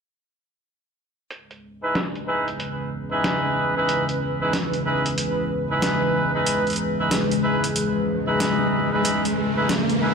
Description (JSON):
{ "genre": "glitch hop", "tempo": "93 BPM", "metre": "4/4", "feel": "swing 63% on 16ths", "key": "C# minor", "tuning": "A4 = 441 Hz", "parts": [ { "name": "dark analog pad", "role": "sustained chords", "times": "2.0-10.1 s", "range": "C#3 to B4", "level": "-24 LUFS", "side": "equal", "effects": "chorus" }, { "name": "boom bap sampler-style drum kit", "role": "drums", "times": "1.3-10.0 s", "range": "hi-hat, snare drum", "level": "-28 LUFS", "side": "equal", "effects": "low-pass filter on hats, studio reverb, low-pass filter on snare" }, { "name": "warm horn section", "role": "stabs", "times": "1.8-10.1 s", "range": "D#4 to B4", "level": "-24 LUFS", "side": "equal", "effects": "low-pass filter, diffuse ambient delay" }, { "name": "riser", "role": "sound effects", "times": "7.5-10.1 s", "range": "none", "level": "-29 LUFS", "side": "right 1 dB", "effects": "none" } ], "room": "wet plate reverb, RT60 2.5 s", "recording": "dreamy mix soaked in reverb", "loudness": "-20 LUFS", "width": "side -5 dB against mid", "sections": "1.3-10.1 A section", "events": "filter sweep on drum 1.3-10.1; riser 7.5-10.1", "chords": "1.3 C#m7", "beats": "| 1.30 1.95 2.59 3.24 | 3.88 4.53 5.17 5.82 | 6.46 7.11 7.75 8.40 | 9.04 9.69" }